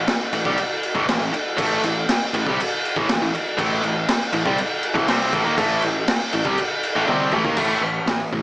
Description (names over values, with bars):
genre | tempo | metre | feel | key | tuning
hard rock | 120 BPM | 4/4 | straight | A minor | A4 = 440 Hz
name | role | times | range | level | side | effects
high-gain distorted guitar | riff | 0.0-8.4 s | A2 to C4 | -22 LUFS | equal | distortion
modern bright picked electric bass | bass | 0.0-8.4 s | A1 to D#2 | -30 LUFS | equal | none
raw garage drum kit | drums | 0.1-8.4 s | crash cymbal, hi-hat, kick drum, snare drum, toms | -21 LUFS | equal | none
room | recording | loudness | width
moderate studio reverb, RT60 0.9 s | small speaker sound | -18 LUFS | side -22 dB against mid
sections
0.0-7.6 A section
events
drum fill 7.1-7.6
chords
0.0 Am; 7.6 A5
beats
0.08 0.58 1.08 | 1.58 2.08 2.58 3.08 | 3.58 4.08 4.58 5.08 | 5.58 6.08 6.58 7.08 | 7.58 8.08